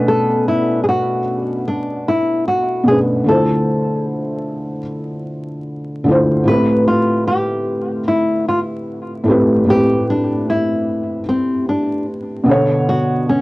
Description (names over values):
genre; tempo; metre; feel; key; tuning
hip hop; 75 BPM; 4/4; swing 65% on 16ths; A minor; A4 = 440 Hz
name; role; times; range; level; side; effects
felt-muted upright piano; accompaniment; 0.0-13.4 s; A2 to C#5; -17 LUFS; equal; cassette tape
nylon-string guitar; melody; 0.1-13.4 s; C4 to B4; -18 LUFS; left 1 dB; cassette tape, analog delay
room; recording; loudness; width
moderate small room reverb, RT60 0.6 s; home recording on cassette, vinyl crackle; -14 LUFS; side -20 dB against mid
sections
0.0-13.4 A section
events
none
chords
0.0 Bm9; 3.3 Dm9; 6.5 Am9; 12.5 Bm9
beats
| 0.06 0.86 1.66 2.46 | 3.26 4.06 4.86 5.66 | 6.46 7.26 8.06 8.86 | 9.66 10.46 11.26 12.06 | 12.86